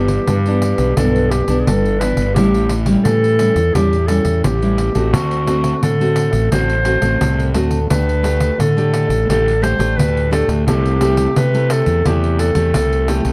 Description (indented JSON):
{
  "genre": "samba and choro",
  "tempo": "87 BPM",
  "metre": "4/4",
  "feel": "straight",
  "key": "unclear",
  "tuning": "A4 = 443 Hz",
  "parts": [
    { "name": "clear clarinet", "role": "second line", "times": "0.0-13.1 s", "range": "F#4 to C5", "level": "-21 LUFS", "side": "equal", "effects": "none" },
    { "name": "nylon-string guitar", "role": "accompaniment", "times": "0.0-13.3 s", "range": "G2 to G4", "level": "-22 LUFS", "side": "equal", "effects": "none" },
    { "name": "fuzz fingered electric bass", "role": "bass", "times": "0.0-13.3 s", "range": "G1 to D3", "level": "-20 LUFS", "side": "equal", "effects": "overdrive" },
    { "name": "pandeiro", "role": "percussion", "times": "0.1-13.3 s", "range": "none", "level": "-24 LUFS", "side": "equal", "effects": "none" }
  ],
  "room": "light reverb",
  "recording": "dark, warm production",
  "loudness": "-16 LUFS",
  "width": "mono",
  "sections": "0.0-13.3 A section",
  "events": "none",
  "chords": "0.0 Em7/G; 2.4 A7; 5.1 D7; 7.9 Dsus4; 10.7 Am7/C"
}